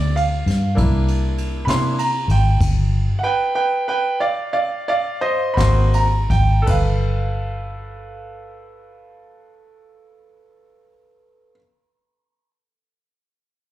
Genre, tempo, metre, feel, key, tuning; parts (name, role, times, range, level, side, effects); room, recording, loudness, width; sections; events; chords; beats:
slow blues; 53-66 BPM (dotted quarters); 12/8; straight; G mixolydian; A4 = 440 Hz
bright grand piano; accompaniment; 0.0-11.6 s; Bb3 to C6; -21 LUFS; right 2 dB
vintage muted fingered electric bass; bass; 0.0-11.6 s; G1 to C3; -18 LUFS; equal
jazz brush drum kit; drums; 0.2-6.8 s; crash cymbal, kick drum, ride cymbal, snare drum; -26 LUFS; equal
studio reverb; live gig heard through the venue's PA, club reverb; -16 LUFS; side -14 dB against mid
0.0-6.7 A section; 6.7-11.2 B section
grand piano solo 0.0-6.7; slowing down 1.4-6.7
0.0 G7(no3); 0.8 C9; 2.6 G; 5.6 Ab9; 6.7 G9
0.77 1.68 | 2.60 3.55 4.54 5.57 | 6.67 7.81 8.95 10.08